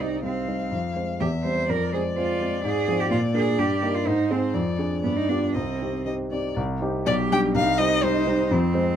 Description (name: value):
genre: quick classical-period movement for piano trio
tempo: 124 BPM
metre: 2/4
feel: rubato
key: C minor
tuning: A4 = 440 Hz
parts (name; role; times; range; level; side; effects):
- rich violin; melody; 0.0-8.5 s; C5 to G5; -29 LUFS; left 5 dB; none
- clear cello; second line; 0.0-9.0 s; B3 to C5; -27 LUFS; right 6 dB; none
- warm grand piano; accompaniment; 0.0-9.0 s; B1 to C5; -24 LUFS; left 1 dB; none
room: light reverb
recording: dark, warm production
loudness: -21 LUFS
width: side -9 dB against mid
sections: 0.0-6.6 A section; 6.6-9.0 A section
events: none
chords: 0.0 Cm; 0.7 Fm; 1.2 C/E; 1.7 Fm; 2.6 Fm/Ab; 3.1 Bb; 3.6 Eb/G; 4.1 Ab; 4.5 Dm7b5/F; 5.0 G7; 5.6 Cm; 7.1 G/B; 7.6 Cm